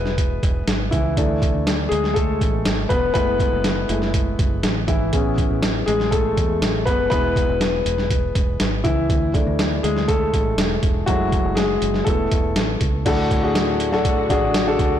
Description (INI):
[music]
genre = piano-driven pop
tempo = 121 BPM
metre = 4/4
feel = straight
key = unclear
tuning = A4 = 440 Hz
[part]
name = warm baby grand piano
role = accompaniment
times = 0.0-15.0 s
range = A2 to B4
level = -21 LUFS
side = left 2 dB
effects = none
[part]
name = fingered electric bass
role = bass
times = 0.0-15.0 s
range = E1 to E2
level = -25 LUFS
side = right 1 dB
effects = none
[part]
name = boom bap sampler-style drum kit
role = drums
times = 0.1-14.9 s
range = crash cymbal, hi-hat, kick drum, snare drum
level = -21 LUFS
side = right 1 dB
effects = none
[part]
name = dark studio string section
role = sustained chords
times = 13.1-15.0 s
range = D3 to F#4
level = -30 LUFS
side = right 1 dB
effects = none
[sound]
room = moderate concert hall reverb, RT60 1.8 s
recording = blown-out, overdriven recording, overdrive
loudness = -17 LUFS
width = side -10 dB against mid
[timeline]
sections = 0.0-13.1 A section; 13.1-15.0 B section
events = grand piano solo 0.0-13.1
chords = 0.0 E; 1.2 Dsus2; 3.2 F#m7; 5.1 Amaj7; 7.1 E; 9.1 Dsus2; 11.1 F#m7; 12.1 Esus4; 13.1 D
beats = 0.18 0.67 | 1.17 1.66 2.16 2.65 | 3.15 3.65 4.14 4.64 | 5.13 5.63 6.12 6.62 | 7.12 7.61 8.11 8.60 | 9.10 9.59 10.09 10.58 | 11.08 11.57 12.07 12.56 | 13.06 13.55 14.05 14.55